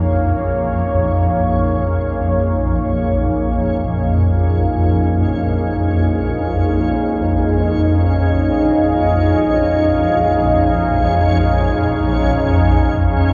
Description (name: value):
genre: dark ambient drone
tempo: free time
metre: none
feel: none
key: Bb minor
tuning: A4 = 439 Hz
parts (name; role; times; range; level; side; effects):
- deep dark ambient pad; sustained chords; 0.0-13.3 s; Bb3 to F5; -20 LUFS; equal; chorus, built-in reverb
- swarming drone; drone; 0.0-13.3 s; Bb1 to F2; -19 LUFS; equal; built-in reverb
- backwards swelling texture; texture; 0.0-13.3 s; Db4 to Db5; -29 LUFS; equal; built-in reverb
room: wet huge ambient reverb, RT60 8.8 s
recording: worn, warbling old tape, cassette tape, warbly pitch drift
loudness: -16 LUFS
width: mono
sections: 0.0-13.3 A section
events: fade-in on synth texture 0.0-13.3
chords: 0.0 Bbm7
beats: free time